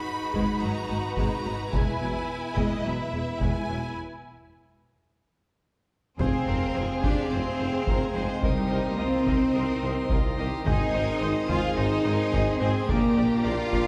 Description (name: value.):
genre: cinematic, epic orchestral film score.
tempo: 108 BPM.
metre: 4/4.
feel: straight.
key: F dorian from 6.2 s.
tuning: A4 = 440 Hz.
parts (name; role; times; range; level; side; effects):
clear studio violin section; melody; 0.0-13.9 s; G4 to B5; -39 LUFS; equal; none.
bright symphonic violin section; second line; 0.0-13.9 s; Eb4 to C5; -38 LUFS; equal; none.
rich symphonic viola section; accompaniment; 0.0-13.8 s; F#3 to Eb5; -37 LUFS; equal; none.
mellow French horn section; sustained chords; 0.0-13.9 s; G#3 to D5; -39 LUFS; equal; none.
clear symphonic cello section; bass; 0.3-13.9 s; E2 to F4; -31 LUFS; equal; none.
rich symphonic double bass section; bass; 0.3-13.8 s; E1 to F2; -35 LUFS; equal; none.
taiko ensemble; drums; 0.3-13.9 s; none; -33 LUFS; equal; none.
clear trombone section; sustained chords; 6.2-13.9 s; Bb2 to C4; -37 LUFS; equal; none.
pipe organ, plenum; sustained chords; 6.2-13.9 s; C4 to F5; -37 LUFS; equal; none.
warm tuba; bass; 6.2-13.8 s; F1 to C2; -36 LUFS; equal; none.
impact; sound effects; 6.2-8.4 s; none; -41 LUFS; equal; none.
room: wet scoring stage reverb, RT60 1.6 s.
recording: heard from further back in the room.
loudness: -26 LUFS.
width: mono.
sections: 0.0-6.2 A section; 6.2-13.9 B section.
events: break 4.0-6.2; drum fill 5.4-6.2; impact 6.2-8.4.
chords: 0.0 G#m7; 1.7 E; 4.0 N.C.; 6.2 Fm; 8.4 Cm7; 10.7 Ab; 12.9 Bb.